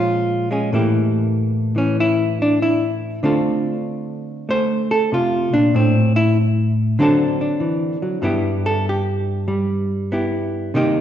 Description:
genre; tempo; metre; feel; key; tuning
solo jazz; 96 BPM; 4/4; swing 66% on 8ths; D minor from 3.2 s; A4 = 440 Hz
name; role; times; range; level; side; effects
hollow-body jazz guitar; solo; 0.0-11.0 s; G2 to C5; -17 LUFS; equal; none
room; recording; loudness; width
wet recital hall reverb, RT60 1.6 s; recorded in a church or concert hall, nothing above 7.9 kHz; -16 LUFS; side -10 dB against mid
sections
0.0-3.2 A section; 3.2-11.0 B section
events
hollow-body jazz guitar solo 3.2-11.0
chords
0.0 Bbm7; 0.7 A5; 3.2 Dm7; 5.7 N.C.; 7.0 D7; 8.2 G6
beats
0.10 | 0.72 1.35 1.98 2.60 | 3.23 3.86 4.48 5.11 | 5.73 6.36 6.99 7.61 | 8.24 8.86 9.49 10.12 | 10.74

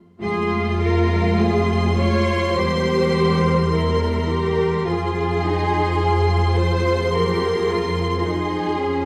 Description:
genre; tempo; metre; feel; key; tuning
classical, slow romantic movement for string orchestra; 48-55 BPM; 4/4; rubato; F minor; A4 = 438 Hz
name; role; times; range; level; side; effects
warm symphonic violin section; melody; 0.2-9.1 s; C6; -31 LUFS; equal; none
warm symphonic violin section; second line; 0.2-9.1 s; F4 to Db5; -26 LUFS; equal; none
rich studio viola section; accompaniment; 0.2-9.1 s; F3 to Bb4; -28 LUFS; equal; none
rich symphonic cello section; bass; 0.2-9.1 s; Db4 to Bb4; -28 LUFS; equal; none
rich symphonic double bass section; bass; 0.2-9.1 s; E2 to F2; -24 LUFS; equal; none
room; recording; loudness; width
moderate concert hall reverb, RT60 2.0 s; dark, warm production; -20 LUFS; mono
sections
0.2-9.1 A section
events
none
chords
0.2 Fm; 2.6 C7/E; 4.9 Fm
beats
| 0.21 1.40 2.56 3.72 | 4.86 6.01 7.13 8.23

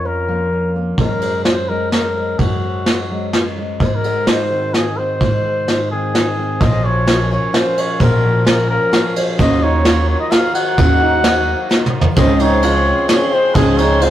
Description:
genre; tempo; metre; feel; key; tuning
indie folk with a building arrangement; 129 BPM; 3/4; straight; unclear; A4 = 441 Hz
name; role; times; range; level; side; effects
warm trumpet; melody; 0.0-14.1 s; Gb4 to Gb5; -19 LUFS; left 1 dB; none
fingerpicked steel-string acoustic guitar; accompaniment; 0.0-10.8 s; F2 to Ab4; -25 LUFS; left 1 dB; none
upright bass; bass; 0.0-14.1 s; Bb1 to Ab2; -20 LUFS; equal; none
vintage brush drum kit; drums; 1.0-14.1 s; kick drum, ride cymbal, snare drum, toms; -17 LUFS; equal; none
picked swing-style acoustic guitar; accompaniment; 6.6-14.1 s; Bb2 to Bb4; -24 LUFS; left 2 dB; none
warm French horn; second line; 8.5-14.1 s; Ab3 to Gb4; -24 LUFS; right 2 dB; none
warm studio string section; sustained chords; 9.4-14.1 s; Eb3 to C6; -26 LUFS; equal; none
warm upright piano; arpeggios; 9.4-14.1 s; Db4 to Gb4; -20 LUFS; right 3 dB; none
bright baby grand piano; accompaniment; 12.2-14.1 s; Db2 to Ab4; -26 LUFS; left 4 dB; none
room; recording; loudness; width
light reverb; rough rehearsal-room recording, warm saturation; -13 LUFS; side -12 dB against mid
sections
0.0-6.6 A section; 6.6-12.2 B section; 12.2-14.1 C section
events
drum fill 11.7-12.2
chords
0.0 Bbm/F; 1.0 Gbadd9; 3.8 Ab; 6.6 Bbm; 9.4 Ebmadd9; 12.2 Dbmaj7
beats
0.04 0.51 | 0.98 1.45 1.92 | 2.40 2.87 3.33 | 3.80 4.27 4.74 | 5.21 5.68 6.14 | 6.61 7.08 7.54 | 8.01 8.47 8.93 | 9.39 9.86 10.32 | 10.78 11.24 11.70 | 12.16 12.63 13.09 | 13.55 14.01

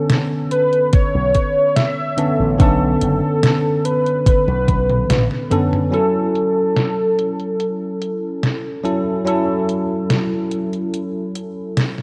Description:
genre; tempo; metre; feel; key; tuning
vaporwave; 72 BPM; 4/4; straight; unclear; A4 = 445 Hz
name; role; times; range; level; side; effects
warm velvety synth lead; melody; 0.0-8.8 s; A4 to E5; -22 LUFS; equal; chorus, tape echo
bell-like tine electric piano; accompaniment; 0.0-12.0 s; D3 to A4; -22 LUFS; equal; analog chorus
detuned 8-bit digital drum machine; drums; 0.1-12.0 s; hi-hat, snare drum, toms; -22 LUFS; equal; overdrive, low-pass filter on hats, vintage 12-bit sampler grit, low-pass filter on snare, low-pass filter on toms, low-pass filter on room
slap bass with an envelope filter; bass; 0.9-5.3 s; F#1 to B1; -23 LUFS; equal; none
electronic kick drum; drums; 0.9-4.9 s; none; -17 LUFS; equal; overdrive, vintage 12-bit sampler grit
warbly tape-like pad; sustained chords; 7.5-12.0 s; F#3 to A4; -33 LUFS; equal; none
room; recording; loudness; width
moderate lush hall reverb, RT60 2.4 s; rough home demo mix, cassette tape; -18 LUFS; mono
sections
0.0-5.9 A section; 5.9-12.0 B section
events
drum fill 4.3-5.9; kick drops out 5.1-5.9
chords
0.0 Bm9; 5.9 F#m7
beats
0.10 0.93 1.76 | 2.60 3.43 4.26 5.10 | 5.93 6.76 7.60 8.43 | 9.27 10.10 10.93 11.77

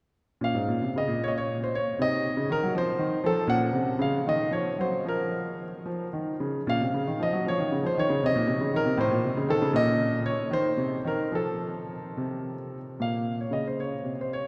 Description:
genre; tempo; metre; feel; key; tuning
classical, baroque-style suite movement for grand piano; 70-81 BPM (dotted quarters); 6/8; rubato; Bb minor; A4 = 440 Hz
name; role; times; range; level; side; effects
warm grand piano; solo; 0.4-14.5 s; Ab2 to Gb5; -28 LUFS; equal; none
room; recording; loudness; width
wet cathedral reverb, RT60 6.2 s; recorded in a church or concert hall; -28 LUFS; mono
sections
0.4-13.0 A section; 13.0-14.5 A section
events
none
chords
0.4 Bbm; 2.0 Cdim; 2.7 F5; 3.5 Bbm; 4.3 Ebm13; 5.1 N.C.; 5.9 Dbadd9; 6.7 Bbm (rootless); 8.2 Bbsus24; 9.0 Adim; 9.7 Bbm; 10.5 Cm7; 11.3 F; 13.0 Bbm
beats
| 0.41 1.21 | 1.98 2.73 | 3.48 4.26 | 5.06 5.87 | 6.68 7.45 | 8.21 8.97 | 9.72 10.49 | 11.31 12.16 | 12.99 13.77

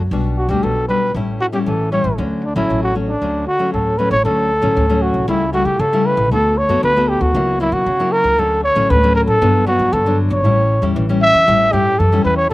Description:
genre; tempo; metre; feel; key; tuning
samba and choro; 116 BPM; 4/4; straight; D major; A4 = 440 Hz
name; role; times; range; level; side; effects
nylon-string guitar; accompaniment; 0.0-12.5 s; G2 to F#4; -20 LUFS; left 2 dB; none
upright bass; bass; 0.0-12.5 s; G1 to C#3; -20 LUFS; equal; none
breathy trumpet; melody; 0.4-12.5 s; D4 to E5; -15 LUFS; equal; none
room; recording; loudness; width
little or no reverb; recorded outdoors, with no room sound; -13 LUFS; side -18 dB against mid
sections
0.0-4.2 A section; 4.2-12.5 B section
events
none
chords
0.1 Gmaj7/B; 1.1 A7; 2.2 Dmaj7; 5.3 A7/C#; 6.3 Bm7/D; 7.3 F#7/C#; 8.4 Dmaj7; 9.4 Gmaj7; 10.4 A7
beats
| 0.12 0.63 1.15 1.67 | 2.18 2.70 3.22 3.73 | 4.25 4.77 5.28 5.80 | 6.32 6.83 7.35 7.86 | 8.38 8.90 9.41 9.93 | 10.44 10.96 11.48 11.99 | 12.51

